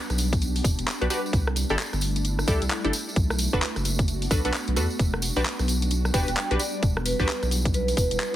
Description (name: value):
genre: UK garage, two-step garage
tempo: 131 BPM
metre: 4/4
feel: swing 62% on 16ths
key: E minor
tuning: A4 = 440 Hz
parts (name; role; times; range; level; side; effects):
- ethereal airy pad; sustained chords; 0.0-8.4 s; G3 to G4; -33 LUFS; equal; ensemble chorus, built-in reverb, sidechain pumping
- saturated sub bass; bass; 0.1-8.2 s; E1 to E2; -27 LUFS; equal; none
- garage drum kit; drums; 0.1-8.3 s; handclaps, hi-hat, rim click; -30 LUFS; left 1 dB; none
- tambourine; percussion; 0.1-8.3 s; none; -34 LUFS; equal; none
- electronic kick drum; drums; 0.3-8.1 s; none; -24 LUFS; equal; none
- punchy chord stab; stabs; 1.0-7.3 s; D4 to B4; -29 LUFS; equal; chorus, digital delay
- vibraphone with medium mallets; melody; 6.1-8.3 s; B4 to G5; -29 LUFS; right 2 dB; none
room: light reverb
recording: heavily compressed radio sound, multiband compression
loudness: -22 LUFS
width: side -13 dB against mid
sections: 0.0-8.4 A section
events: none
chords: 0.0 Em7; 1.3 C6; 2.9 Bm7; 5.0 Em7